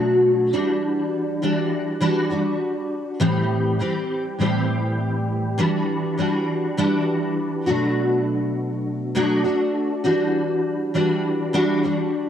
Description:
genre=indie pop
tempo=101 BPM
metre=4/4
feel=swing 55% on 16ths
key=E minor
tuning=A4 = 440 Hz
part: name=picked steel-string acoustic guitar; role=solo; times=0.0-12.3 s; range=A2 to G4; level=-19 LUFS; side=equal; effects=ensemble chorus, warbly pitch drift, analog delay
room=light reverb, small room ambience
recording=cassette tape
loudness=-20 LUFS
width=side -9 dB against mid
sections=0.0-12.3 A section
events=none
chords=0.0 Bm7; 0.5 Em9; 3.2 Am7; 5.6 Em9; 7.7 Bm7; 10.0 Em9

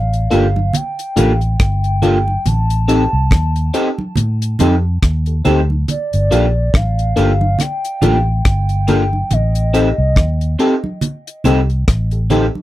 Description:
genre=lovers rock reggae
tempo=70 BPM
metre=4/4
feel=swing 57% on 16ths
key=G minor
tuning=A4 = 440 Hz
part: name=hollow clarinet-like synth lead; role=melody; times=0.0-11.0 s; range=D5 to A5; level=-22 LUFS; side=equal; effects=chorus, tape echo
part: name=vintage muted fingered electric bass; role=bass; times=0.0-12.5 s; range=G1 to A2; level=-15 LUFS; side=equal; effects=none
part: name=deep reggae drum kit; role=drums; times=0.1-12.5 s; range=hi-hat, kick drum, rim click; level=-16 LUFS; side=equal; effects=none
part: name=FM electric piano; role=accompaniment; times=0.3-12.5 s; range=Bb3 to A4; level=-17 LUFS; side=left 4 dB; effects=chorus
part: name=electric guitar through a small old amp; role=stabs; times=0.3-12.5 s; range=Bb3 to G4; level=-17 LUFS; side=right 3 dB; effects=analog chorus
part: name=congas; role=percussion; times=0.6-12.6 s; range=none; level=-21 LUFS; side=right 2 dB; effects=none
room=little or no reverb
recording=dry, close 1970s-style studio recording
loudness=-13 LUFS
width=side -15 dB against mid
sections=0.0-12.6 A section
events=none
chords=0.0 Gm7; 2.5 Am7b5; 5.9 Gm7; 9.3 Am7b5

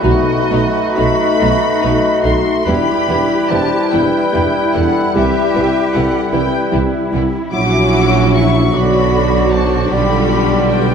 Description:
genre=classical, slow romantic movement for symphony orchestra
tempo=42-52 BPM (dotted quarters)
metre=6/8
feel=rubato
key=E minor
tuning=A4 = 441 Hz
part: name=rich symphonic violin section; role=melody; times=0.0-10.9 s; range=D#5 to D6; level=-21 LUFS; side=left 5 dB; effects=none
part: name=bright baroque flute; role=second line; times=0.0-10.9 s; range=F#4 to F#5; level=-22 LUFS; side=left 2 dB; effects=none
part: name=dark cor anglais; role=second line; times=0.0-10.9 s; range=B4 to E5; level=-24 LUFS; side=right 3 dB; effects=none
part: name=mellow clarinet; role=second line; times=0.0-10.9 s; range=D#4 to F#4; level=-23 LUFS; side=left 1 dB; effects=none
part: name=warm symphonic violin section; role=second line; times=0.0-10.9 s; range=B3 to F#4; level=-24 LUFS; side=left 4 dB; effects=none
part: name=rich studio viola section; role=accompaniment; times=0.0-10.9 s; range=D3 to A3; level=-22 LUFS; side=right 1 dB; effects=none
part: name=warm bassoon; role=accompaniment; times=0.0-10.9 s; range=F#3 to A3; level=-22 LUFS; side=right 2 dB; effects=none
part: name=clear French horn section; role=sustained chords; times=0.0-10.9 s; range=F#3 to F4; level=-20 LUFS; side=left 5 dB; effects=none
part: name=mellow tuba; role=bass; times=0.0-10.9 s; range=E1 to C2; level=-21 LUFS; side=right 3 dB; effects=none
part: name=rich symphonic cello section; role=bass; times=0.0-10.9 s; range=E4 to G4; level=-22 LUFS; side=right 1 dB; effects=none
part: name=rich symphonic double bass section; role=bass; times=0.0-10.9 s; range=A#1 to E2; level=-20 LUFS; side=right 4 dB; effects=none
part: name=timpani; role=percussion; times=0.0-1.4 s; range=B2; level=-24 LUFS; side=right 1 dB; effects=none
room=moderate scoring stage reverb, RT60 1.6 s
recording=dark, warm production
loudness=-12 LUFS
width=side -7 dB against mid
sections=0.0-10.9 A section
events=none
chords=0.0 B7; 2.7 Em; 5.1 Cmaj7; 7.5 F#7/A#; 8.7 Bm; 9.9 G7/B

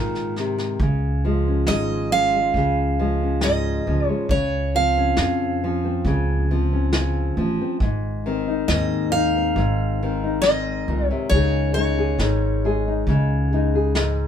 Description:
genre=acoustic folk duo or small band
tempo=68 BPM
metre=4/4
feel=straight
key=Db major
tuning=A4 = 440 Hz
part: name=nylon-string guitar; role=accompaniment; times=0.0-14.3 s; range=Ab2 to Ab4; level=-23 LUFS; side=left 4 dB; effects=none
part: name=upright bass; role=bass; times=0.0-14.3 s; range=Ab1 to Ab2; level=-23 LUFS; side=right 1 dB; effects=none
part: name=vintage brush drum kit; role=drums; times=0.2-14.2 s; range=kick drum, snare drum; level=-25 LUFS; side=equal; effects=none
part: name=picked steel-string acoustic guitar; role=melody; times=1.7-13.5 s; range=Db5 to F5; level=-23 LUFS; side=right 3 dB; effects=none
room=light reverb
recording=band playing live in one room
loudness=-19 LUFS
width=side -8 dB against mid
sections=0.8-14.3 A section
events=none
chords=0.0 Abadd9; 0.8 Db; 4.3 Dbmaj7; 7.8 Ab; 11.3 Dbsus2

